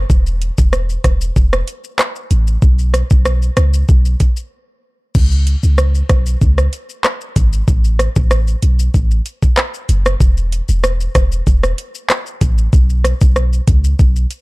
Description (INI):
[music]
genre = dancehall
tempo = 95 BPM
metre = 4/4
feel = straight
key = C# minor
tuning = A4 = 440 Hz
[part]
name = clean 808-style bass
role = bass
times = 0.0-14.3 s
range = E1 to C#2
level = -14 LUFS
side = equal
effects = none
[part]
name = afro-pop drum kit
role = drums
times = 0.1-14.4 s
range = crash cymbal, handclaps, hi-hat, kick drum, rim click, shaker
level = -14 LUFS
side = equal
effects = none
[sound]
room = digital ambience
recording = dark, warm production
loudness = -12 LUFS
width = side -23 dB against mid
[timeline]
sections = 0.0-5.2 A section; 5.2-14.4 B section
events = break 4.5-5.2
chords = none